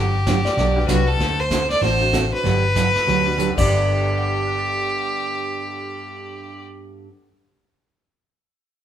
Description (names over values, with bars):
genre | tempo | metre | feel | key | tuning
country, western swing | 192 BPM | 4/4 | swing 61% on 8ths | G major | A4 = 441 Hz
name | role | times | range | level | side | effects
clear fiddle | melody | 0.0-6.7 s | F#4 to D5 | -22 LUFS | equal | none
picked steel-string acoustic guitar | accompaniment | 0.0-7.1 s | G2 to A4 | -26 LUFS | right 6 dB | none
vintage muted fingered electric bass | bass | 0.0-6.6 s | G1 to D2 | -22 LUFS | left 1 dB | none
vintage brush drum kit | drums | 0.3-3.6 s | brushed snare drum, crash cymbal, hi-hat, kick drum, snare drum | -27 LUFS | left 1 dB | none
clean lap steel guitar | second line | 0.5-1.1, 3.6-6.7 s | B4 to D5 | -26 LUFS | left 1 dB | none
clear upright piano | accompaniment | 0.8-7.7 s | G2 to A6 | -32 LUFS | left 2 dB | none
room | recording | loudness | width
moderate large studio reverb, RT60 1.0 s | band playing live in one room | -17 LUFS | side -10 dB against mid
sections
0.0-1.2 A section; 1.2-3.7 B section; 3.7-6.2 C section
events
drum fill 3.4-3.7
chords
0.0 Gmaj7; 1.2 D7; 2.4 Gmaj7; 3.5 G